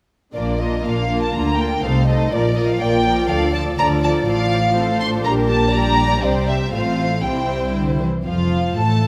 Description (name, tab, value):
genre	quick classical-period movement for string orchestra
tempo	122 BPM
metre	2/4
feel	straight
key	Bb major, F major from 4.3 s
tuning	A4 = 440 Hz
part	warm studio violin section	melody	0.3-9.1 s	D5 to C6	-24 LUFS	equal	none
part	warm studio violin section	second line	0.3-9.1 s	E4 to D5	-26 LUFS	equal	none
part	warm studio viola section	accompaniment	0.3-9.1 s	F3 to F4	-26 LUFS	equal	none
part	dark studio cello section	bass	0.3-9.1 s	F2 to E3	-25 LUFS	equal	none
part	dark studio double bass section	bass	0.3-9.1 s	F1 to D2	-25 LUFS	equal	none
room	moderate scoring stage reverb, RT60 1.8 s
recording	none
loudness	-19 LUFS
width	mono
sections	0.3-8.3 A section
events	none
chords	0.3 Bb; 1.3 Bb/D; 1.8 Adim/C; 2.3 Bb; 3.3 Dm; 4.3 F/A; 5.2 Gm/Bb; 6.2 C; 6.7 F/A; 7.2 C; 8.3 F